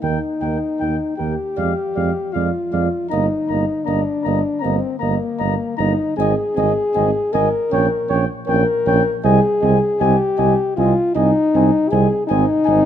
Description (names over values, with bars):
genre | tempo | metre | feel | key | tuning
classical, brass quintet | 78 BPM | 4/4 | straight | unclear | A4 = 439 Hz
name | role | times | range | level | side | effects
mellow trumpet | melody | 0.0-12.8 s | F5 to Bb5 | -25 LUFS | left 8 dB | none
mellow flugelhorn | second line | 0.0-12.8 s | Bb4 to Eb5 | -26 LUFS | right 8 dB | none
mellow French horn | accompaniment | 0.0-12.9 s | Bb3 to Bb4 | -19 LUFS | left 3 dB | none
warm trombone | accompaniment | 0.0-12.8 s | Eb3 to Db4 | -28 LUFS | right 4 dB | none
warm tuba | bass | 0.0-12.8 s | G1 to F2 | -20 LUFS | right 4 dB | none
room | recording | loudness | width
light reverb | close, detailed microphones | -16 LUFS | side -10 dB against mid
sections
0.0-12.9 A section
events
none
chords
0.0 Eb; 1.6 Ddim/F; 3.1 Eb/G; 6.2 Ab; 7.7 Gdim/Bb; 9.2 Ab/C; 12.3 Ab